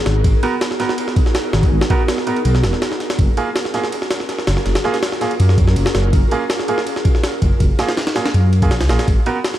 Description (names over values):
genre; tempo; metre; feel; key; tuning
drum and bass, jungle; 163 BPM; 4/4; straight; unclear; A4 = 444 Hz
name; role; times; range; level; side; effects
dark detuned saw bass; bass; 0.1-9.2 s; D#1 to F#2; -16 LUFS; equal; none
jungle sampler-style drum kit; drums; 0.1-9.6 s; kick drum, ride cymbal, snare drum; -18 LUFS; equal; none
clear baby grand piano; stabs; 0.4-9.4 s; A#3 to A#4; -23 LUFS; right 3 dB; vintage 12-bit sampler grit, dub echo
room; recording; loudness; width
light reverb; dark, warm production, vinyl crackle; -14 LUFS; side -13 dB against mid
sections
0.0-9.6 A section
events
none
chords
0.0 G#m7; 3.2 F#maj7; 9.1 G#m7